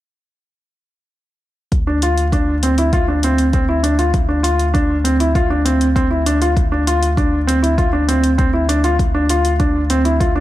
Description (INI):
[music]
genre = piano and strings electronica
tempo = 99 BPM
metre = 4/4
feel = straight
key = unclear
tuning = A4 = 440 Hz
[part]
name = warm sub bass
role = bass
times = 1.7-10.4 s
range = D2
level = -18 LUFS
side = equal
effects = sidechain pumping
[part]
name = electronic hi-hat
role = drums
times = 1.7-10.3 s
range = none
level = -26 LUFS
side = left 1 dB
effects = none
[part]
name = electronic kick drum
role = drums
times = 1.7-10.3 s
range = none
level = -18 LUFS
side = equal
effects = none
[part]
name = warm upright piano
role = riff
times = 1.9-10.4 s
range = C4 to F4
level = -16 LUFS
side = equal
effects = digital delay
[sound]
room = light reverb, digital ambience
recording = none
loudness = -14 LUFS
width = side -14 dB against mid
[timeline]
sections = 1.7-10.4 A section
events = none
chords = 1.7 F5/D